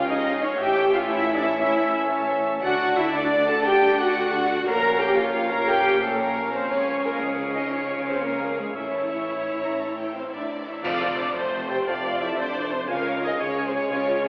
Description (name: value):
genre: cinematic, heroic adventure film score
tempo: 117 BPM (dotted quarters)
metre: 12/8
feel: straight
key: unclear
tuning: A4 = 440 Hz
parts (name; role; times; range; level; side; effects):
- rich symphonic violin section; melody; 0.0-14.3 s; Ab4 to Bb5; -36 LUFS; equal; none
- clear clarinet; second line; 0.0-14.3 s; C5 to D5; -37 LUFS; equal; none
- clear oboe; second line; 0.0-14.3 s; E5 to A5; -34 LUFS; equal; none
- hollow large flute ensemble; second line; 0.0-14.3 s; Ab4 to Bb5; -34 LUFS; equal; none
- warm symphonic violin section; second line; 0.0-14.3 s; Ab4 to C6; -37 LUFS; equal; none
- warm symphonic viola section; accompaniment; 0.0-14.3 s; Ab3 to D5; -32 LUFS; equal; none
- mellow French horn section; sustained chords; 0.0-14.3 s; Ab3 to Bb4; -31 LUFS; equal; none
- warm trombone section; sustained chords; 0.0-14.3 s; C3 to E4; -33 LUFS; equal; none
- mellow trumpet section; stabs; 0.0-14.3 s; D4 to Bb5; -31 LUFS; equal; none
- rich symphonic cello section; bass; 0.0-14.3 s; F2 to D3; -36 LUFS; equal; none
- rich symphonic double bass section; bass; 0.0-14.3 s; F1 to D2; -41 LUFS; equal; none
- cymbal swell, clash cymbals and concert bass drum; percussion; 6.7-11.5 s; none; -38 LUFS; equal; none
room: wet scoring stage reverb, RT60 1.8 s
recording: heard from further back in the room, telephone sound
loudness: -24 LUFS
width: mono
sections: 0.0-10.8 A section; 10.8-14.3 B section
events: band accent 10.8-11.2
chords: 0.0 Db; 0.6 A; 2.6 D; 4.7 Bbm; 6.7 Db; 8.8 A; 10.8 F; 12.9 Db